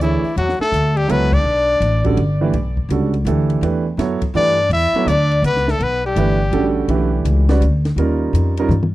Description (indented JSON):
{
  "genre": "modal jazz",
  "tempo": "166 BPM",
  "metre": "3/4",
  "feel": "swing 64% on 8ths",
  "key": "E dorian",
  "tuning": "A4 = 441 Hz",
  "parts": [
    { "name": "brilliant trumpet", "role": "melody", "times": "0.0-2.1, 4.4-6.7 s", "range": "E4 to E5", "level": "-19 LUFS", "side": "left 1 dB", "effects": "tape echo" },
    { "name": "bright trombone", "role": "second line", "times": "0.0-2.1, 4.4-6.7 s", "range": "E3 to E4", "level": "-24 LUFS", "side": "left 5 dB", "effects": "none" },
    { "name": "warm grand piano", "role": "accompaniment", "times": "0.0-8.7 s", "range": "D3 to D5", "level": "-20 LUFS", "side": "right 4 dB", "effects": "none" },
    { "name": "upright bass", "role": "bass", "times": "0.0-8.9 s", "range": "G1 to G2", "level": "-18 LUFS", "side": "left 1 dB", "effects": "none" },
    { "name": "compact cocktail drum kit", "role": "drums", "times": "0.0-8.9 s", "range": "crash cymbal, hi-hat, kick drum, ride cymbal, snare drum, toms", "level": "-24 LUFS", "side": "left 1 dB", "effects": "none" }
  ],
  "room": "studio reverb",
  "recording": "dry, close 1970s-style studio recording",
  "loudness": "-14 LUFS",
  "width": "side -16 dB against mid",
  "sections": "0.4-8.9 A section",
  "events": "band accent 1.3; drum fill 8.7",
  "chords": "0.4 Em9; 8.0 D#7",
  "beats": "0.00 | 0.36 0.72 1.09 | 1.45 1.81 2.18 | 2.54 2.90 3.27 | 3.63 3.99 4.35 | 4.72 5.08 5.44 | 5.80 6.16 6.53 | 6.89 7.25 7.61 | 7.97 8.34 8.70"
}